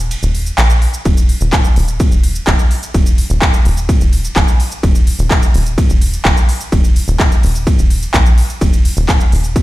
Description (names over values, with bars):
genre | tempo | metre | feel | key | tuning
melodic techno | 127 BPM | 4/4 | straight | unclear | A4 = 441 Hz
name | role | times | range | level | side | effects
tight sequencer bass | bass | 0.0-9.6 s | Eb1 to Bb1 | -15 LUFS | equal | sidechain pumping
techno drum kit | drums | 0.1-9.6 s | handclaps, hi-hat, ride cymbal, shaker | -19 LUFS | equal | overdrive
electronic kick drum | drums | 1.1-9.6 s | none | -12 LUFS | equal | overdrive
room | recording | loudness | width
digital ambience | played on a big sound system in a bare room, stone room reverb | -10 LUFS | side -17 dB against mid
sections
0.0-9.6 A section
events
kick drops out 0.1-1.1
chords
none